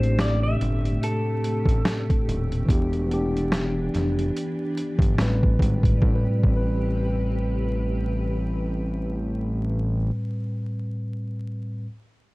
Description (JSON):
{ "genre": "lo-fi hip hop", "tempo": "72 BPM", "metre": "4/4", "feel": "swing 56% on 16ths", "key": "A minor", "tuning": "A4 = 440 Hz", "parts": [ { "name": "electric guitar through a small old amp", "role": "melody", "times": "0.0-5.2 s", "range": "A4 to E5", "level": "-31 LUFS", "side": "equal", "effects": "low-pass filter, analog delay" }, { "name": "mellow tine electric piano", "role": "accompaniment", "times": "0.0-11.9 s", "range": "A2 to B4", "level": "-26 LUFS", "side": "equal", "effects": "slow stereo tremolo, cassette tape, low-pass filter" }, { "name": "granular cloud pad", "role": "sustained chords", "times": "0.0-10.1 s", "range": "C3 to B4", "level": "-35 LUFS", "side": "equal", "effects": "built-in reverb, low-pass filter" }, { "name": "fat analog bass", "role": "bass", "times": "0.0-10.1 s", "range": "D#1 to A1", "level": "-26 LUFS", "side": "equal", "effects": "none" }, { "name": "boom bap sampler-style drum kit", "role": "drums", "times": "0.0-6.7 s", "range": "hi-hat, kick drum, snare drum", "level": "-22 LUFS", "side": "equal", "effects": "none" } ], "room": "moderate studio reverb, RT60 0.6 s", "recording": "dark, warm production, vinyl crackle", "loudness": "-22 LUFS", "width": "side -22 dB against mid", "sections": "0.0-6.0 A section; 6.0-9.4 B section", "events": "none", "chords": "0.0 Am7; 2.7 Em7; 5.2 Am9" }